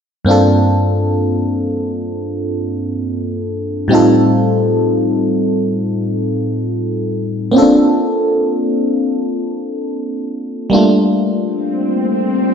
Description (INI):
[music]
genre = contemporary R&B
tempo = free time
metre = none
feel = none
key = G minor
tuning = A4 = 440 Hz
[part]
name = FM electric piano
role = accompaniment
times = 0.2-12.5 s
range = G2 to A4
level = -13 LUFS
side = equal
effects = chorus, phaser
[part]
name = swell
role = sound effects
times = 11.7-12.5 s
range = none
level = -19 LUFS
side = left 1 dB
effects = none
[sound]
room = moderate lush hall reverb, RT60 1.9 s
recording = dark, warm production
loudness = -13 LUFS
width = side -7 dB against mid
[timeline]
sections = 0.3-12.5 A section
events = swell 11.7-12.5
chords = 0.3 Gm11; 3.9 F9/A; 7.5 Bbmaj9; 10.7 Gm9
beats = free time